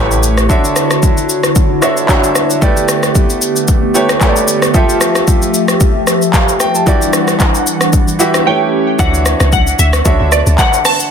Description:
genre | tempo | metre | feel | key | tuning
amapiano | 113 BPM | 4/4 | swing 55% on 16ths | unclear | A4 = 440 Hz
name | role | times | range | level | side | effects
clear concert grand piano | accompaniment | 0.0-11.1 s | D3 to A5 | -16 LUFS | right 2 dB | none
hollow soft pad | sustained chords | 0.0-9.0 s | C#3 to F#5 | -16 LUFS | equal | chorus
plucky analog bass | bass | 0.0-0.5 s | A1 | -14 LUFS | equal | none
deep house drum kit | drums | 0.1-11.1 s | handclaps, hi-hat, kick drum, rim click, shaker | -12 LUFS | equal | none
glassy wavetable pluck | melody | 8.5-11.1 s | D5 to A5 | -15 LUFS | right 1 dB | chorus, digital delay
deep log drum bass | bass | 9.0-10.6 s | C#2 to D2 | -12 LUFS | equal | none
room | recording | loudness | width
light reverb | dense, heavily limited modern master | -9 LUFS | side -7 dB against mid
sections
0.0-9.0 A section; 9.0-11.1 B section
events
drop 9.0-11.1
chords
0.5 Dmaj9; 2.6 A9sus4; 4.7 Fmaj9; 6.9 Em9; 8.5 A7; 9.0 Dmaj9

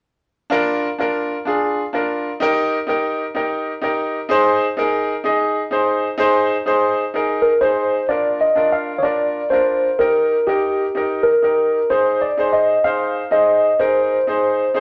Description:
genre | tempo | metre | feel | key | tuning
soul | 126 BPM | 4/4 | swing 60% on 8ths | unclear | A4 = 442 Hz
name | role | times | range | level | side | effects
clear grand piano | accompaniment | 0.5-14.8 s | D4 to Eb5 | -21 LUFS | equal | none
mellow tine electric piano | melody | 7.4-14.8 s | G4 to F5 | -18 LUFS | equal | none
room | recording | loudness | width
wet studio reverb, RT60 0.6 s | none | -18 LUFS | mono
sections
0.5-8.1 A section; 8.1-14.8 B section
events
none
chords
0.5 Bb; 2.4 Eb; 4.3 Ab; 8.1 Bb; 10.0 Eb; 11.9 Ab

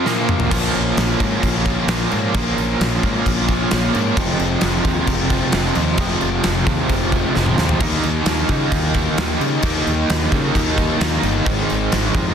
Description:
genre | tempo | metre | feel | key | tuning
hard rock | 132 BPM | 4/4 | straight | Bb dorian | A4 = 441 Hz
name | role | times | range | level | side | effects
biting overdriven guitar | riff | 0.0-12.3 s | F2 to Eb4 | -25 LUFS | right 2 dB | none
cranked stack guitar | riff | 0.0-12.3 s | F2 to Eb4 | -23 LUFS | right 11 dB | overdrive, tremolo
sludgy distorted guitar | riff | 0.0-12.3 s | F2 to Eb4 | -23 LUFS | left 9 dB | overdrive
gated 80s drum kit | drums | 0.1-12.3 s | crash cymbal, kick drum, snare drum, toms | -20 LUFS | equal | none
fuzz fingered electric bass | bass | 0.5-12.3 s | F1 to Db3 | -23 LUFS | equal | overdrive
room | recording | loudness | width
light reverb, small room ambience | dense, heavily limited modern master | -16 LUFS | side -8 dB against mid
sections
0.5-12.3 A section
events
break 0.0-0.5; drum fill 0.1-0.5, 7.4-7.8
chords
0.1 Bb5; 0.5 Bbm; 4.2 Fm; 7.8 Eb; 11.5 Ab

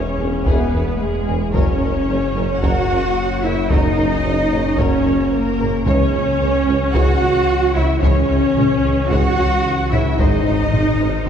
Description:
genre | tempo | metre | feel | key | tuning
cinematic, hybrid orchestral and electronic film score | 111 BPM | 4/4 | straight | C# dorian | A4 = 436 Hz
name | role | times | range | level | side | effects
rich symphonic violin section | second line | 0.0-11.3 s | G#4 to F#5 | -25 LUFS | left 1 dB | none
dark symphonic viola section | accompaniment | 0.0-11.3 s | G#3 to F#4 | -23 LUFS | equal | none
metallic inharmonic drone | sustained chords | 0.0-11.3 s | D#3 to C#5 | -26 LUFS | left 3 dB | chorus, built-in reverb
rich symphonic cello section | bass | 0.0-11.3 s | G#3 to F#4 | -22 LUFS | right 1 dB | none
sub bass with octave | bass | 0.0-11.3 s | E1 to C#2 | -24 LUFS | equal | none
warm tuba | bass | 0.0-11.3 s | E1 to C#2 | -26 LUFS | right 1 dB | none
warm symphonic violin section | melody | 0.2-11.3 s | G#4 to C#5 | -31 LUFS | left 4 dB | none
rich symphonic double bass section | bass | 0.2-11.3 s | G#1 to F#2 | -25 LUFS | right 1 dB | none
dark trombone section | sustained chords | 0.5-11.3 s | F#2 to G#3 | -31 LUFS | right 1 dB | none
mellow French horn section | sustained chords | 0.5-11.3 s | G#4 to E5 | -33 LUFS | right 1 dB | none
taiko ensemble | drums | 0.5-11.3 s | none | -22 LUFS | left 1 dB | none
room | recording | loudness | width
wet scoring stage reverb, RT60 2.1 s | heard from further back in the room | -15 LUFS | side -8 dB against mid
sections
0.0-11.3 A section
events
none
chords
0.0 E; 1.5 F#; 5.9 C#m; 10.2 G#

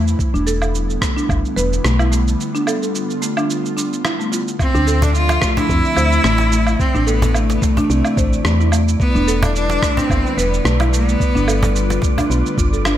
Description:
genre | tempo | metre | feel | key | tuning
organic downtempo | 109 BPM | 4/4 | swing 55% on 16ths | unclear | A4 = 440 Hz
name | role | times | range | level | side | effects
airy breathy pad | sustained chords | 0.0-13.0 s | C3 to E5 | -25 LUFS | left 1 dB | chorus, sidechain pumping
buzzing marimba with medium mallets | arpeggios | 0.0-13.0 s | A3 to C5 | -21 LUFS | equal | digital delay
woody FM bass | bass | 0.0-13.0 s | E1 to F2 | -17 LUFS | equal | sidechain pumping
electronic cabasa, woodblock and rim click | drums | 0.1-13.0 s | none | -24 LUFS | right 2 dB | studio reverb, gated reverb
electronic kick drum | drums | 0.2-12.7 s | none | -19 LUFS | equal | studio reverb
bright cello | melody | 4.6-12.0 s | A3 to F4 | -20 LUFS | left 1 dB | digital delay
wind-like tuned noise texture | texture | 5.2-13.0 s | D5 | -31 LUFS | right 6 dB | built-in reverb, lush chorus
cajon | percussion | 5.0-12.3 s | none | -23 LUFS | right 1 dB | none
room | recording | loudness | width
light reverb, studio reverb | bright 1980s-style digital production | -14 LUFS | side -12 dB against mid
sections
0.0-13.0 A section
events
break 2.4-4.6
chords
0.2 Em7; 2.4 G7; 4.6 Dmadd9; 6.8 Am; 9.0 Em7; 11.2 G7

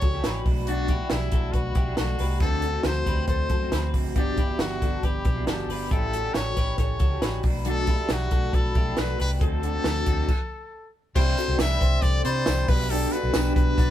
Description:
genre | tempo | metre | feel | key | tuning
jangly indie pop | 137 BPM | 4/4 | straight | G major | A4 = 440 Hz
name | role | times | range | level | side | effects
brilliant trumpet | melody | 0.0-13.9 s | E4 to E5 | -30 LUFS | left 2 dB | none
electric guitar through a small old amp | accompaniment | 0.0-13.9 s | A2 to G4 | -33 LUFS | right 4 dB | none
twelve-string electric guitar | arpeggios | 0.0-13.9 s | D4 to B5 | -31 LUFS | left 4 dB | tremolo
vintage muted fingered electric bass | bass | 0.0-13.9 s | F#1 to C3 | -27 LUFS | equal | none
compact cocktail drum kit | drums | 0.0-13.9 s | crash cymbal, hi-hat, kick drum, snare drum | -25 LUFS | equal | none
tambourine | percussion | 11.2-13.9 s | none | -43 LUFS | right 6 dB | none
room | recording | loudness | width
light reverb | band playing live in one room | -22 LUFS | side -12 dB against mid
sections
0.0-11.2 A section; 11.2-13.9 B section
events
stop 10.3-11.2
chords
0.5 Bm7; 2.4 D7; 4.2 Gmaj7; 5.9 A7; 7.4 Bm7; 9.4 D7; 11.2 Cadd9; 12.7 Gmaj7/B

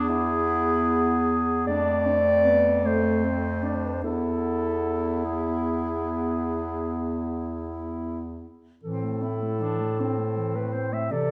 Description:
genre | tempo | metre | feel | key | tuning
classical, lyrical piece for single-reed quartet | 48-54 BPM (dotted quarters) | 12/8 | rubato | A minor | A4 = 440 Hz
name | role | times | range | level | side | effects
warm clarinet | melody | 0.0-11.3 s | G#4 to E5 | -28 LUFS | equal | none
clear alto saxophone | second line | 0.0-11.3 s | A3 to A4 | -33 LUFS | equal | none
warm clarinet | accompaniment | 0.0-11.3 s | E3 to C4 | -33 LUFS | equal | none
bright bass clarinet | bass | 0.0-11.3 s | E2 to C3 | -33 LUFS | equal | none
room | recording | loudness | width
wet recital hall reverb, RT60 1.5 s | none | -26 LUFS | mono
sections
0.0-11.3 A section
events
none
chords
0.0 E; 1.7 F; 4.0 E; 8.8 Am

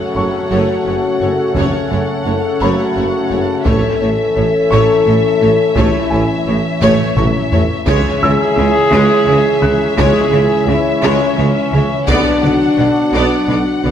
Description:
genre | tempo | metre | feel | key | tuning
cinematic, hybrid orchestral and electronic film score | 57 BPM (dotted quarters) | 6/8 | straight | F# minor | A4 = 443 Hz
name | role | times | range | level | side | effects
rich symphonic violin section | melody | 0.0-13.9 s | E5 to F#5 | -24 LUFS | left 4 dB | none
chorused pulse-width pad | sustained chords | 0.0-13.9 s | C#3 to D5 | -23 LUFS | equal | none
clear trombone section | sustained chords | 0.0-13.9 s | C#3 to D4 | -24 LUFS | right 3 dB | none
warm French horn section | sustained chords | 0.0-13.9 s | C#4 to A4 | -16 LUFS | left 2 dB | none
warm symphonic violin section | second line | 0.2-13.9 s | C#5 to D5 | -22 LUFS | left 3 dB | none
warm symphonic viola section | accompaniment | 0.2-13.9 s | G#3 to B3 | -23 LUFS | right 1 dB | none
mellow tuba | bass | 0.2-13.9 s | F#1 to C#2 | -21 LUFS | right 3 dB | none
rich symphonic cello section | bass | 0.2-13.9 s | F#2 to C#3 | -22 LUFS | right 2 dB | none
rich symphonic double bass section | bass | 0.2-13.9 s | F#1 to C#2 | -22 LUFS | right 3 dB | none
dark baby grand piano | texture | 0.2-13.9 s | C#5 to F#6 | -24 LUFS | left 1 dB | tape echo
taiko ensemble | drums | 1.6-13.9 s | none | -20 LUFS | left 1 dB | none
room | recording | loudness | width
wet scoring stage reverb, RT60 1.6 s | none | -11 LUFS | side -9 dB against mid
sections
0.0-13.9 A section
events
band accent 0.0; drum fill 6.8-7.9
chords
0.0 F#m; 3.7 A; 7.9 C#m; 12.1 Bm

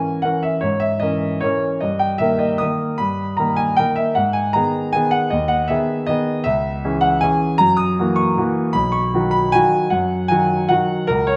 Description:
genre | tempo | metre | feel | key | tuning
classical, piano waltz | 155 BPM | 3/4 | uneven beats, rubato | unclear | A4 = 436 Hz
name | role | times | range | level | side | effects
clear concert grand piano | solo | 0.0-11.4 s | B1 to D#6 | -19 LUFS | equal | none
room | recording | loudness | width
moderate recital hall reverb, RT60 1.7 s | close, detailed microphones | -19 LUFS | mono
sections
0.0-11.4 A section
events
none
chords
0.0 A#m7b5; 1.8 D#/G; 4.2 G#m; 6.5 C#m; 7.6 F#7; 8.8 B

